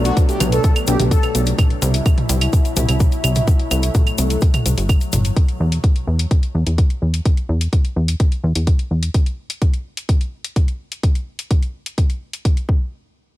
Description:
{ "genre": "melodic techno", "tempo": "127 BPM", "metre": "4/4", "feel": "straight", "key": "unclear", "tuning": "A4 = 438 Hz", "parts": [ { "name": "lush unison pad", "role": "sustained chords", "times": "0.0-5.3 s", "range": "A3 to E4", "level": "-26 LUFS", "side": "left 1 dB", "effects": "chorus, sidechain pumping" }, { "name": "woody wave-folded pluck", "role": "arpeggios", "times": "0.0-1.4 s", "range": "A3 to B4", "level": "-29 LUFS", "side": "left 4 dB", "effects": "none" }, { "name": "plucky analog bass", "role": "bass", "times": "0.0-9.1 s", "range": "G1 to E2", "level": "-17 LUFS", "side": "equal", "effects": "sidechain pumping" }, { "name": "swarming drone", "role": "drone", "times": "0.0-5.4 s", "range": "B2 to F#3", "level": "-29 LUFS", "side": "left 1 dB", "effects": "built-in reverb, sidechain pumping" }, { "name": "egg shaker", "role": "percussion", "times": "0.0-5.3 s", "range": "none", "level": "-31 LUFS", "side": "left 4 dB", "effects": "none" }, { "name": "downlifter", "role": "sound effects", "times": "0.0-1.6 s", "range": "none", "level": "-38 LUFS", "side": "equal", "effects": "none" }, { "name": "analog synth brass", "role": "melody", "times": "0.1-1.4 s", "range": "F#4 to A4", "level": "-25 LUFS", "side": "equal", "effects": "chorus, sidechain pumping, ping-pong delay" }, { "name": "house drum kit", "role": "drums", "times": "0.1-12.7 s", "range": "claves, hi-hat, toms", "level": "-24 LUFS", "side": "right 1 dB", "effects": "sidechain pumping on hats, studio reverb, sidechain pumping on toms, sidechain pumping on cymbals, sidechain pumping on perc" }, { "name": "electronic kick drum", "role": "drums", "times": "0.2-12.8 s", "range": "none", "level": "-15 LUFS", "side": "equal", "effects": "studio reverb" } ], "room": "little or no reverb", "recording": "none", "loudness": "-15 LUFS", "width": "side -16 dB against mid", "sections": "0.0-12.9 A section", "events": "filter sweep on analog synth bass 0.0-9.1", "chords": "0.0 Bm7; 1.6 C; 5.4 N.C." }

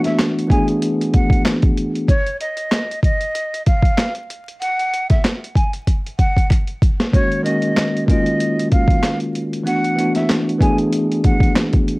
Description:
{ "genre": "hip hop, boom-bap hip-hop", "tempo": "95 BPM", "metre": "4/4", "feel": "swing 56% on 16ths", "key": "unclear", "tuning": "A4 = 440 Hz", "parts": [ { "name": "breathy jazz flute", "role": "melody", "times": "0.0-11.5 s", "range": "Db5 to Ab5", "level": "-23 LUFS", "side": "right 1 dB", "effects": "high-pass filter, low-pass filter, cassette tape, analog delay" }, { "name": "bell-like tine electric piano", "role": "accompaniment", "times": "0.0-2.1, 7.1-12.0 s", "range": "Eb3 to Ab4", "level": "-18 LUFS", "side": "equal", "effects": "medium stereo tremolo, cassette tape, high-pass filter, low-pass filter" }, { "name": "boom bap sampler-style drum kit", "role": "drums", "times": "0.0-12.0 s", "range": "handclaps, hi-hat, kick drum, snare drum", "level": "-16 LUFS", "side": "equal", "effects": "overdrive, cassette tape" }, { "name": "finger snap", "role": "percussion", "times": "0.2-11.7 s", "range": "none", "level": "-33 LUFS", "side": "right 2 dB", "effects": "none" } ], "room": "light reverb", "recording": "home recording on cassette, vinyl crackle", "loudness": "-15 LUFS", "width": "side -24 dB against mid", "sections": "0.0-12.0 A section", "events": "drum fill 5.9-7.1", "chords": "0.0 E9sus4; 2.1 N.C.; 7.1 Ab9sus4; 9.7 E9sus4" }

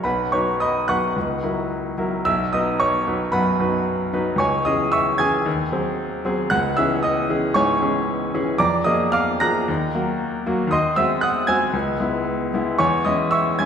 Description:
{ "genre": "classical, romantic character piece for solo piano", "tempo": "105-118 BPM", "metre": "4/4", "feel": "rubato", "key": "B major", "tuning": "A4 = 438 Hz", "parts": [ { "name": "bright grand piano", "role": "solo", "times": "0.0-13.7 s", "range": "B1 to A#6", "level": "-18 LUFS", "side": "equal", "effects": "none" } ], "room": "wet concert hall reverb, RT60 2.0 s", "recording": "recorded in a church or concert hall", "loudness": "-18 LUFS", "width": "side -7 dB against mid", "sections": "0.0-13.7 A section", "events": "none", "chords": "0.0 B; 1.2 F#7/C#; 2.2 B; 4.4 C#m; 5.5 G#7/D#; 6.5 C#m; 8.6 A#7/E#; 9.7 D#m; 10.7 G#7/D#; 11.7 C#m7; 12.8 C#m/E" }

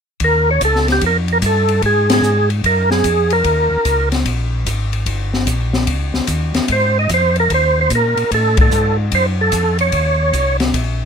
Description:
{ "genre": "soul jazz organ trio", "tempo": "148 BPM", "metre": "4/4", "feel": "swing 66% on 8ths", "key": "Eb mixolydian", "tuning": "A4 = 440 Hz", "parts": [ { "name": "overdriven tonewheel organ", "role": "melody", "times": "0.2-4.1, 6.7-10.6 s", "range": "G4 to Eb5", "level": "-15 LUFS", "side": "right 2 dB", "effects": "slow rotary speaker, chorus vibrato" }, { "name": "mellow tonewheel organ", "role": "bass", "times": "0.2-11.1 s", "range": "G1 to Bb2", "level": "-18 LUFS", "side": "equal", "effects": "chorus vibrato" }, { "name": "open jazz drum kit", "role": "drums", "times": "0.2-10.9 s", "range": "hi-hat, kick drum, ride cymbal, snare drum", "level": "-20 LUFS", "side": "left 2 dB", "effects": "none" } ], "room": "little or no reverb", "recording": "close, detailed microphones", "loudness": "-13 LUFS", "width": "side -7 dB against mid", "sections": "0.2-11.1 A section", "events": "band accent 2.0, 8.5", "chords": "0.2 Eb7; 1.8 Fmadd11; 3.5 Eb7; 6.7 Ab5; 8.3 F; 9.9 Eb5" }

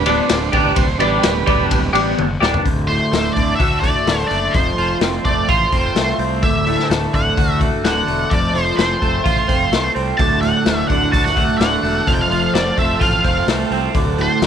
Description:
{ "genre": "psychedelic rock", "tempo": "127 BPM", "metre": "4/4", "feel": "straight", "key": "unclear", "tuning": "A4 = 439 Hz", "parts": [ { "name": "combo organ", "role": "sustained chords", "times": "0.0-2.2, 10.2-14.5 s", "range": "D3 to D5", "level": "-23 LUFS", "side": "right 14 dB", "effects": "none" }, { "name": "fuzz fingered electric bass", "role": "bass", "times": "0.0-14.5 s", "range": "D1 to D2", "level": "-23 LUFS", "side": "equal", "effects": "overdrive" }, { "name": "twelve-string electric guitar", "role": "riff", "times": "0.1-14.5 s", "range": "D2 to G4", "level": "-18 LUFS", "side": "equal", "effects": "phaser" }, { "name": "raw garage drum kit", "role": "drums", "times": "0.1-14.5 s", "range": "hi-hat, kick drum, ride cymbal, snare drum, toms", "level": "-20 LUFS", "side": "left 2 dB", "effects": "none" }, { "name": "octave-fuzz lead guitar", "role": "melody", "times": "2.9-14.5 s", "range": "C5 to A5", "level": "-20 LUFS", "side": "equal", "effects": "distortion, tape echo" } ], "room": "studio reverb", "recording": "1960s-style stereo", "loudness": "-14 LUFS", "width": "side -8 dB against mid", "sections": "0.0-2.7 A section; 2.7-14.5 B section", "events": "transistor combo organ solo 0.0-2.7; drum fill 2.2-2.7", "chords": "0.0 G/D; 2.7 D; 4.5 F; 6.4 D; 8.3 F; 10.2 D; 12.1 F; 13.9 D" }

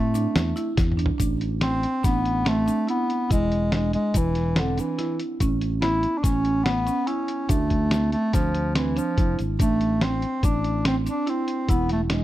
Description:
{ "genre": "progressive instrumental, band music in an uneven meter", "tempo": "143 BPM", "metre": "5/4", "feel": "straight", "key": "A harmonic minor", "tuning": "A4 = 440 Hz", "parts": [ { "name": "warm bass clarinet", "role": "melody", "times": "0.0-12.2 s", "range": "D3 to E4", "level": "-25 LUFS", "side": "left 1 dB", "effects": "none" }, { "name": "marimba with medium mallets", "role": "arpeggios", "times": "0.0-12.2 s", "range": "B3 to E4", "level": "-29 LUFS", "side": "right 5 dB", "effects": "none" }, { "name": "fingered electric bass", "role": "bass", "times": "0.0-12.2 s", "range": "E1 to A2", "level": "-26 LUFS", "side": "equal", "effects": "none" }, { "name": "tube shaker", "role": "percussion", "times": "0.1-11.9 s", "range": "none", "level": "-40 LUFS", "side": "left 20 dB", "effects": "none" }, { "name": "lo-fi sampler-style drum kit", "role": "drums", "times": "0.2-12.2 s", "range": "hi-hat, kick drum, snare drum, toms", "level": "-25 LUFS", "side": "equal", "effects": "none" } ], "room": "studio ambience", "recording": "dry, close 1970s-style studio recording", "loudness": "-21 LUFS", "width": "side -14 dB against mid", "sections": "0.0-1.2 A section; 1.2-12.2 B section", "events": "drum fill 0.8-1.2", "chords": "0.0 A5; 1.2 Amadd9; 3.3 E; 5.4 A; 7.5 Dm; 9.6 Am; 11.7 E" }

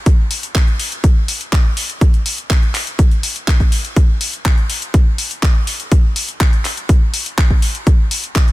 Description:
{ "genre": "house", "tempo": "123 BPM", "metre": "4/4", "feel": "straight", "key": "none", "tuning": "none", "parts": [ { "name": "deep house drum kit", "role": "drums", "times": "0.1-8.5 s", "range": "handclaps, hi-hat", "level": "-20 LUFS", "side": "left 1 dB", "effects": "overdrive, sidechain pumping on hats" }, { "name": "electronic kick drum", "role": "drums", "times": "0.1-8.5 s", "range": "none", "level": "-12 LUFS", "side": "equal", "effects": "none" } ], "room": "little or no reverb", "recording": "dense, heavily limited modern master", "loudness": "-13 LUFS", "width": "side -18 dB against mid", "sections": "0.0-8.5 A section", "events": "none", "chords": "none" }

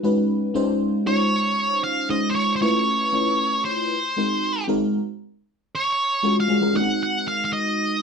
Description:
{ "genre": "pop", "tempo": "116 BPM", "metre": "4/4", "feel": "straight", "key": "Db major", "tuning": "A4 = 440 Hz", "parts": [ { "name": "FM electric piano with soft pad layer", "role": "accompaniment", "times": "0.0-8.0 s", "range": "Ab3 to Db5", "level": "-22 LUFS", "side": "left 1 dB", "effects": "chorus" }, { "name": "octave-fuzz lead guitar", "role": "melody", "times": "1.1-8.0 s", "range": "C5 to Gb5", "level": "-22 LUFS", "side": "right 2 dB", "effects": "distortion" } ], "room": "moderate studio reverb, RT60 0.6 s", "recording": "band playing live in one room", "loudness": "-19 LUFS", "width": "side -5 dB against mid", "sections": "0.0-4.9 A section; 4.9-8.0 B section", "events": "none", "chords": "0.0 Cb69; 0.6 Dbmaj9; 2.6 Db7alt; 3.9 Ab9; 4.9 Gbmaj7; 6.8 Ab7" }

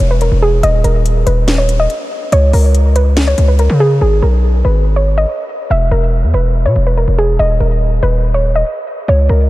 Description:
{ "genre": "hip hop, trap", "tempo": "142 BPM", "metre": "4/4", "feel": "half-time", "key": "G# minor", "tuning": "A4 = 440 Hz", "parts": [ { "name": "soft round pluck", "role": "melody", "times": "0.0-9.5 s", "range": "G#4 to E5", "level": "-16 LUFS", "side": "equal", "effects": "chorus, tape echo" }, { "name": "distorted 808-style bass", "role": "bass", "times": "0.0-9.5 s", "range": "D#1 to C#3", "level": "-11 LUFS", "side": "equal", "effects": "distortion" }, { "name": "trap drum kit", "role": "drums", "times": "0.0-3.7 s", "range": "hi-hat, snare drum", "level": "-22 LUFS", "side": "equal", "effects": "none" } ], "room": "light reverb, digital ambience", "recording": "none", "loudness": "-10 LUFS", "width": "side -17 dB against mid", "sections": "0.0-4.0 A section; 4.0-9.5 B section", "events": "none", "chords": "0.0 E5; 0.6 D#5; 2.3 A#m7/C#; 4.0 G#madd9; 5.7 E5; 7.4 D#5" }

